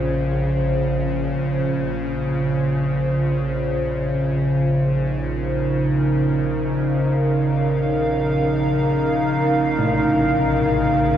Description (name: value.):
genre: dark ambient drone.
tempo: free time.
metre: none.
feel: none.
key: unclear.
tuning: A4 = 439 Hz.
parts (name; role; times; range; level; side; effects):
dark analog pad; sustained chords; 0.0-11.2 s; Eb4 to F5; -22 LUFS; equal; chorus, phaser.
carillon bells; arpeggios; 0.0-1.2, 9.8-11.2 s; A2 to F4; -29 LUFS; right 1 dB; none.
bowed-like drone; drone; 0.0-11.2 s; Bb1 to Db3; -20 LUFS; right 1 dB; built-in reverb.
room: wet huge ambient reverb, RT60 8.1 s.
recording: none.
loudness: -18 LUFS.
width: side -10 dB against mid.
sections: 0.0-11.2 A section.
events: none.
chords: 0.0 Bbm; 4.2 Eb5/Bb.